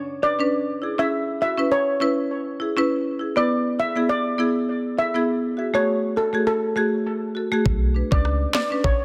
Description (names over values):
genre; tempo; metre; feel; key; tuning
dancehall; 101 BPM; 4/4; swing 56% on 16ths; B dorian; A4 = 442 Hz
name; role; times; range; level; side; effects
steel pan; melody; 0.2-9.0 s; A4 to E5; -26 LUFS; equal; tape echo
marimba with hard mallets; accompaniment; 0.2-8.8 s; A3 to B4; -25 LUFS; equal; none
short 808-style bass; bass; 7.7-8.5 s; B1 to C#2; -23 LUFS; equal; none
island pop drum kit; drums; 7.7-9.0 s; handclaps, kick drum, rim click, snare drum; -25 LUFS; equal; none
room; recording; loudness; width
light reverb, small room ambience; dense, heavily limited modern master; -22 LUFS; mono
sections
0.0-9.0 A section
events
none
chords
0.0 Bmadd9; 0.5 C#m; 2.9 E; 5.3 F#madd9; 7.7 Bmadd9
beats
| 0.53 1.12 1.72 2.31 | 2.90 3.50 4.09 4.69 | 5.28 5.87 6.47 7.06 | 7.66 8.25 8.84